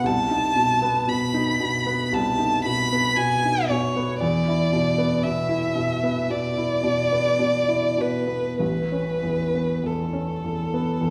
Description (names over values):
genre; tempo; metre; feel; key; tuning
classical, impressionist duo for violin and grand piano; 48-59 BPM; 4/4; rubato; unclear; A4 = 440 Hz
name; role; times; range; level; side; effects
warm violin; melody; 0.0-11.1 s; A4 to B5; -25 LUFS; equal; none
clear baby grand piano; accompaniment; 0.0-11.1 s; A1 to E4; -26 LUFS; equal; none
room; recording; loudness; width
wet recital hall reverb, RT60 1.4 s; heard from further back in the room; -23 LUFS; mono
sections
0.0-11.1 A section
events
none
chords
0.1 B/C; 4.2 E5; 8.6 Aadd9